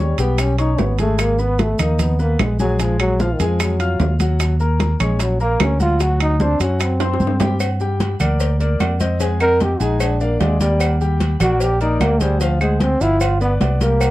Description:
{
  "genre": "Afro-Cuban jazz",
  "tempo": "150 BPM",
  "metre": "4/4",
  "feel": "straight",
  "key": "Eb minor, G minor from 7.6 s",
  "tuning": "A4 = 440 Hz",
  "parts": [
    { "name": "mellow trombone", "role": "melody", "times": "0.0-14.1 s", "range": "Eb3 to Bb4", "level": "-20 LUFS", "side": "equal", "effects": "none" },
    { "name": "warm concert grand piano", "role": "accompaniment", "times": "0.0-14.1 s", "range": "F3 to F6", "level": "-24 LUFS", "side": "left 4 dB", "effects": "none" },
    { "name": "fingered electric bass", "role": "bass", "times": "0.0-14.1 s", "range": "G1 to G2", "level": "-18 LUFS", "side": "equal", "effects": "none" },
    { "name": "bongos and cowbell", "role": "percussion", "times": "0.2-14.1 s", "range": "none", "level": "-29 LUFS", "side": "left 6 dB", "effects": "none" },
    { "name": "congas", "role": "percussion", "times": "0.2-14.1 s", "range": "none", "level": "-24 LUFS", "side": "equal", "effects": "none" },
    { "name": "maracas", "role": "percussion", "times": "0.2-14.1 s", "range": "none", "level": "-34 LUFS", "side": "right 6 dB", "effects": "none" },
    { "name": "timbales and agogo bells", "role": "percussion", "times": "0.2-14.1 s", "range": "none", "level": "-27 LUFS", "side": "right 6 dB", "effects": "none" },
    { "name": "claves", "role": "percussion", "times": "0.4-14.1 s", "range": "none", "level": "-28 LUFS", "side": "equal", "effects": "none" }
  ],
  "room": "light reverb",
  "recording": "dark, warm production",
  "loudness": "-15 LUFS",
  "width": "side -16 dB against mid",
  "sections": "0.0-7.6 A section; 7.6-14.1 A section",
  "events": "trombone solo 0.0-14.1; drum fill 7.0-7.6",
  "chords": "0.0 Eb7b13 (rootless); 1.2 Abm; 2.8 Bb5; 4.4 Ebm7; 6.0 D7; 7.6 Gm7; 9.2 Fm7; 10.0 Bb7; 10.8 Ebmaj7; 12.4 Dm7b5; 13.2 G7"
}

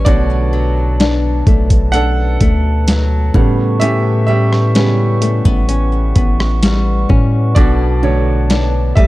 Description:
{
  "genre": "contemporary R&B",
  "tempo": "64 BPM",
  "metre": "4/4",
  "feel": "straight",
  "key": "B minor",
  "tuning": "A4 = 440 Hz",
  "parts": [
    { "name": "warm concert grand piano", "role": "accompaniment", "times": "0.0-9.1 s", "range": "C#3 to F#5", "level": "-20 LUFS", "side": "right 4 dB", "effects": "none" },
    { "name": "glass harmonica", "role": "sustained chords", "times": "0.0-9.1 s", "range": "G4 to C#6", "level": "-25 LUFS", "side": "left 1 dB", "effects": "sidechain pumping" },
    { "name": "flamenco guitar", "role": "arpeggios", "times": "0.0-9.1 s", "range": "A2 to D4", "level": "-19 LUFS", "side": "left 4 dB", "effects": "digital delay" },
    { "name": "long sustained 808-style bass", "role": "bass", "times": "0.0-9.1 s", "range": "A1 to A2", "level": "-15 LUFS", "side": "equal", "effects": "none" },
    { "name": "dusty soul sampler-style drum kit", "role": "drums", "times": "0.1-9.1 s", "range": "hi-hat, kick drum, rim click, snare drum", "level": "-14 LUFS", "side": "equal", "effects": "overdrive" },
    { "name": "synth chime", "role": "texture", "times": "7.6-9.1 s", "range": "A4 to E5", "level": "-28 LUFS", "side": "equal", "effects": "ensemble chorus, phaser, digital delay" }
  ],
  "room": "small room ambience",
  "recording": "dark, warm production",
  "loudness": "-11 LUFS",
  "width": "side -17 dB against mid",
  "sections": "0.0-9.1 A section",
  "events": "grand piano solo 0.0-9.1",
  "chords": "0.1 Bm7; 3.3 A9; 7.6 Bm7"
}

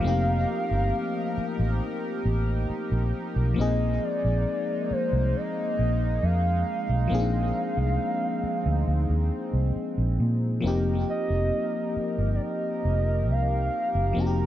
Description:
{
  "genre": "contemporary R&B",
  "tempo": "68 BPM",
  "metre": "4/4",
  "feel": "straight",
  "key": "unclear",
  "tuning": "A4 = 439 Hz",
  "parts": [
    { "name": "gliding portamento lead", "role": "melody", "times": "0.0-14.5 s", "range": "C5 to Bb5", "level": "-30 LUFS", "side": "right 1 dB", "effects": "chorus, tape echo" },
    { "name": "FM electric piano", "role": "accompaniment", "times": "0.0-14.5 s", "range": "F3 to Ab4", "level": "-30 LUFS", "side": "left 4 dB", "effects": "chorus, tape echo" },
    { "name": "chorused pulse-width pad", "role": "sustained chords", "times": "0.0-14.5 s", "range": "F3 to Bb4", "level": "-35 LUFS", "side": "right 2 dB", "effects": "none" },
    { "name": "vintage muted fingered electric bass", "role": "bass", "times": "0.0-14.5 s", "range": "F1 to Bb2", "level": "-24 LUFS", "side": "equal", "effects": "none" }
  ],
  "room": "light reverb",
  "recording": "echo-heavy mix",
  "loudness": "-24 LUFS",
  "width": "side -12 dB against mid",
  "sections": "0.0-10.6 A section; 10.6-14.5 B section",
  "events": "none",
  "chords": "0.0 F9sus4; 3.6 Bb9sus4; 10.6 F9sus4"
}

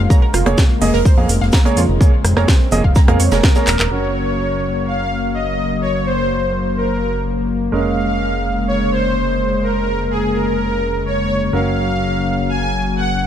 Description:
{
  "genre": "progressive house",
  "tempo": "126 BPM",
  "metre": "4/4",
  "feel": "straight",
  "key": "unclear",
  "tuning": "A4 = 443 Hz",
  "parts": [
    { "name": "warm analog pad", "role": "sustained chords", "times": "0.0-13.3 s", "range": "Db3 to C4", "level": "-22 LUFS", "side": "left 3 dB", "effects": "chorus, sidechain pumping" },
    { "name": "analog pluck", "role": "arpeggios", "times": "0.0-3.9 s", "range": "F4 to Bb5", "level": "-24 LUFS", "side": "right 5 dB", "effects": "chorus, sidechain pumping, ping-pong delay" },
    { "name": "fat analog bass", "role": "bass", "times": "0.0-13.3 s", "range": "Eb1 to F2", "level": "-21 LUFS", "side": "equal", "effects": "sidechain pumping" },
    { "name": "clear grand piano", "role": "stabs", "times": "0.1-13.3 s", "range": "Gb3 to F5", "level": "-23 LUFS", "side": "right 5 dB", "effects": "sidechain pumping, low-pass filter, ping-pong delay" },
    { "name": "electronic kick drum", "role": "drums", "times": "0.1-3.5 s", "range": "none", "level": "-12 LUFS", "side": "equal", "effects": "none" },
    { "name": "tight funk drum kit", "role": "drums", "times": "0.1-3.9 s", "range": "hi-hat, shaker, snare drum", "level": "-30 LUFS", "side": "left 2 dB", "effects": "high-pass filter on hats, high-pass filter on snare, high-pass filter on perc, high-pass filter on room" },
    { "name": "house drum kit", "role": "drums", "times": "0.3-3.9 s", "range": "handclaps, hi-hat, rim click, snare drum", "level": "-22 LUFS", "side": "equal", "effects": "low-pass filter on hats, low-pass filter on snare, low-pass filter on room" },
    { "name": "soft supersaw", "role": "melody", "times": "3.4-13.3 s", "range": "Ab4 to Ab5", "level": "-20 LUFS", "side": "equal", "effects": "sidechain pumping" }
  ],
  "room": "small room reverb",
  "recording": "dark, warm production",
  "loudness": "-14 LUFS",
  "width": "side -10 dB against mid",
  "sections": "0.0-3.9 A section; 3.9-13.3 B section",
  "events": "drum fill 3.7",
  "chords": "0.1 Bbm7/F; 3.9 Gb; 7.7 Bbm7/F; 11.5 Gb"
}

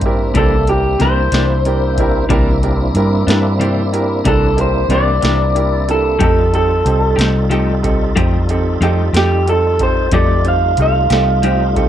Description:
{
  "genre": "slow blues",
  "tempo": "61 BPM (dotted quarters)",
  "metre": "12/8",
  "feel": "straight",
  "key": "C mixolydian",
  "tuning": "A4 = 440 Hz",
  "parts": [
    { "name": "electric guitar through a small old amp", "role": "melody", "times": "0.0-11.9 s", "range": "G4 to F5", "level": "-16 LUFS", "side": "right 1 dB", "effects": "none" },
    { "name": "tonewheel organ", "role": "sustained chords", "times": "0.0-11.9 s", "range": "G3 to A4", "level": "-23 LUFS", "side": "equal", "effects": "slow rotary speaker, chorus vibrato" },
    { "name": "vintage muted fingered electric bass", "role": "bass", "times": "0.0-11.9 s", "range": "C2 to G2", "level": "-16 LUFS", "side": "equal", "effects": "none" },
    { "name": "booming analog drum machine", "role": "drums", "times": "0.0-11.9 s", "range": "hi-hat, kick drum, snare drum", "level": "-19 LUFS", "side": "equal", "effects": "none" },
    { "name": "bright upright piano", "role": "accompaniment", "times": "0.1-11.9 s", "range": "C4 to C5", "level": "-21 LUFS", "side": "right 3 dB", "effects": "plate reverb" },
    { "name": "semi-hollow electric guitar", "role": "accompaniment", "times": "0.3-11.6 s", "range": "C3 to G4", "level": "-21 LUFS", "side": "left 4 dB", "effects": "tremolo" }
  ],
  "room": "light reverb",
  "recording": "none",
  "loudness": "-12 LUFS",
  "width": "side -10 dB against mid",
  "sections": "0.0-11.9 A section",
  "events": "none",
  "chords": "0.0 C9; 6.2 F9"
}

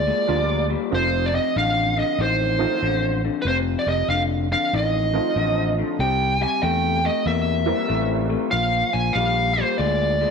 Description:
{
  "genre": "blues",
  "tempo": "95 BPM",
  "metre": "4/4",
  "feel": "swing 65% on 8ths",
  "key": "F mixolydian",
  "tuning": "A4 = 440 Hz",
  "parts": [
    { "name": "smooth overdriven lead guitar", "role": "melody", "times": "0.0-10.3 s", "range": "B4 to Ab5", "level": "-22 LUFS", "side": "right 2 dB", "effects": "none" },
    { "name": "electric guitar through a small old amp", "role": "riff", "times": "0.0-10.3 s", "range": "F2 to Bb3", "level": "-25 LUFS", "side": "left 13 dB", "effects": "none" },
    { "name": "fingered electric bass", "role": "bass", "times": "0.0-10.2 s", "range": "F1 to E2", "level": "-25 LUFS", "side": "right 1 dB", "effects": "none" },
    { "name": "honky-tonk upright piano", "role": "accompaniment", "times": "0.3-8.5 s", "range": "E3 to F4", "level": "-28 LUFS", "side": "right 12 dB", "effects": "none" }
  ],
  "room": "moderate echo chamber reverb, RT60 1.7 s",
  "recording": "1960s-style stereo with parts hard left and right",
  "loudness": "-19 LUFS",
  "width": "side -5 dB against mid",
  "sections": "0.0-10.3 A section",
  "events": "none",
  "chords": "0.0 Bb7; 0.9 F7; 6.0 C7; 8.5 Bb7"
}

